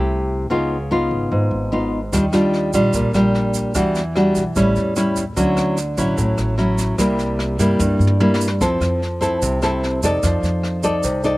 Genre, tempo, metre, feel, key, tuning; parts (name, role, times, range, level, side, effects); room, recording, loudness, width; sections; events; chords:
bossa nova; 148 BPM; 4/4; straight; A4 = 440 Hz
nylon-string guitar; accompaniment; 0.0-11.4 s; G2 to D5; -17 LUFS; equal
upright bass; bass; 0.0-11.4 s; G#1 to G2; -23 LUFS; equal
jazz brush drum kit; drums; 2.1-11.3 s; kick drum, rim click, snare drum, toms; -29 LUFS; equal
tube shaker; percussion; 2.1-11.4 s; -31 LUFS; right 8 dB
little or no reverb; recorded outdoors, with no room sound; -16 LUFS; side -19 dB against mid
0.0-8.6 A section; 8.6-11.4 B section
drum fill 7.8-8.6
0.0 Fmaj9 (rootless); 0.5 C#9; 2.1 Ebmaj9; 3.7 Em9; 4.6 A7; 5.4 Dmaj9; 7.0 C7; 8.6 Fmaj7; 10.2 F13